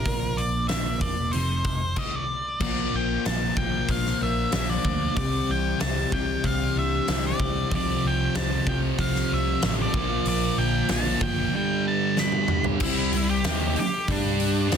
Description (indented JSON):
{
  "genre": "quiet-loud alternative rock",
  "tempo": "94 BPM",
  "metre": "4/4",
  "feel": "straight",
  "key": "C mixolydian",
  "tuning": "A4 = 444 Hz",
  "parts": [
    { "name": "octave-fuzz lead guitar", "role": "melody", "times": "0.0-14.8 s", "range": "D4 to B5", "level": "-29 LUFS", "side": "equal", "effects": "distortion, tape echo" },
    { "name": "twelve-string electric guitar", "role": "arpeggios", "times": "0.0-12.8 s", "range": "F2 to A4", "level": "-32 LUFS", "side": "right 3 dB", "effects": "phaser" },
    { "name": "picked electric bass", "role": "bass", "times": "0.0-14.8 s", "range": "E1 to G2", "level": "-29 LUFS", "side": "equal", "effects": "none" },
    { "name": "big rock drum kit", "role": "drums", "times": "0.1-14.8 s", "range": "crash cymbal, hi-hat, kick drum, snare drum, toms", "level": "-29 LUFS", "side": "left 1 dB", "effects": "none" },
    { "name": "thick fuzz guitar", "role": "riff", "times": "2.6-14.8 s", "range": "F2 to G4", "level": "-30 LUFS", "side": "left 12 dB", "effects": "distortion" },
    { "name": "thick fuzz guitar", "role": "riff", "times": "7.7-14.8 s", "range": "F2 to G4", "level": "-28 LUFS", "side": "right 12 dB", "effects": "distortion" }
  ],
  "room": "light reverb, small room ambience",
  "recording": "dense, heavily limited modern master",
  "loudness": "-22 LUFS",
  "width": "side -7 dB against mid",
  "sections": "0.0-2.6 A section; 2.6-12.8 B section; 12.8-14.8 C section",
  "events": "stop 2.0-2.6; drum fill 12.2-12.8",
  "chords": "0.1 Bb; 1.3 F7; 2.6 Bb; 5.2 Cadd9; 7.7 F/C; 10.0 Bb; 11.5 G; 12.8 C; 14.1 G5"
}